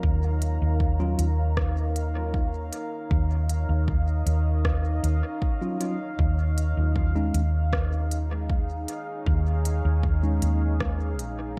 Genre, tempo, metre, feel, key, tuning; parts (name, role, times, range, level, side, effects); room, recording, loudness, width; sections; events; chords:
ambient dub; 78 BPM; 4/4; straight; A4 = 439 Hz
deep dark ambient pad; sustained chords; 0.0-11.6 s; Eb4 to Bb5; -38 LUFS; equal; chorus, built-in reverb
hollow-body short-scale fingered electric bass; bass; 0.0-11.6 s; Bb1 to Eb2; -26 LUFS; equal
electronic kick drum; drums; 0.0-11.0 s; -29 LUFS; equal
bubbling stepped-filter texture; texture; 0.0-11.6 s; F5; -41 LUFS; equal; chorus, built-in reverb
organic electronic drum kit; drums; 0.4-11.3 s; hi-hat, rim click; -38 LUFS; equal; dub echo
mellow tine electric piano; stabs; 1.0-11.6 s; Gb3 to F4; -36 LUFS; equal; dub echo
digital ambience; echo-heavy mix; -25 LUFS; mono
0.0-11.6 A section
fade-out 10.3-11.6
0.0 Eb7sus2; 6.2 Dbsus2